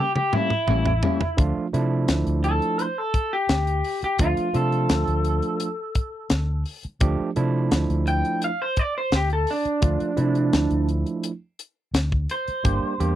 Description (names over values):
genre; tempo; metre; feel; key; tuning
straight-eighth soul blues; 85 BPM; 4/4; straight; D minor; A4 = 440 Hz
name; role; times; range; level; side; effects
electric guitar through a small old amp; melody; 0.0-13.2 s; D4 to G5; -25 LUFS; equal; none
overdriven tine electric piano; accompaniment; 0.0-13.2 s; F3 to G4; -26 LUFS; right 4 dB; none
electric guitar through a small old amp; stabs; 0.2-1.3 s; A2 to C#4; -25 LUFS; left 6 dB; none
tight funk drum kit; drums; 0.2-13.2 s; hi-hat, kick drum, snare drum, toms; -24 LUFS; equal; none
vintage muted fingered electric bass; bass; 0.7-13.2 s; G1 to C3; -24 LUFS; equal; none
room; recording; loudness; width
little or no reverb; dry, close 1970s-style studio recording; -21 LUFS; side -12 dB against mid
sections
0.0-1.4 A section; 1.4-13.2 B section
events
drum fill 0.0-1.4; clean electric guitar solo 0.0-1.4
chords
0.0 A7b9; 1.4 Dm; 12.7 Gm